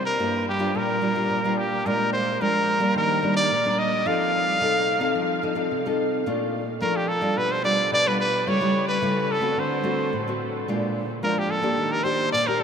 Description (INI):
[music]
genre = samba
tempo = 109 BPM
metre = 4/4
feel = straight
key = Bb major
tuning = A4 = 440 Hz
[part]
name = bright trumpet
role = melody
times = 0.0-12.6 s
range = G4 to F5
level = -23 LUFS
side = equal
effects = none
[part]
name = nylon-string guitar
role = accompaniment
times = 0.0-12.6 s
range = G2 to A4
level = -25 LUFS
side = equal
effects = none
[sound]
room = wet huge ambient reverb, RT60 8.2 s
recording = in a vast, echoing space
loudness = -21 LUFS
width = side -7 dB against mid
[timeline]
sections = 0.0-12.6 A section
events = none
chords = 0.0 C7; 0.8 Gm7/Bb; 1.9 Bb7; 3.0 Ebmaj7; 4.1 F7; 6.3 Bbmaj7; 7.4 G7/B; 8.5 A7/C#; 9.6 D7; 10.7 Bb7; 11.8 Ebmaj7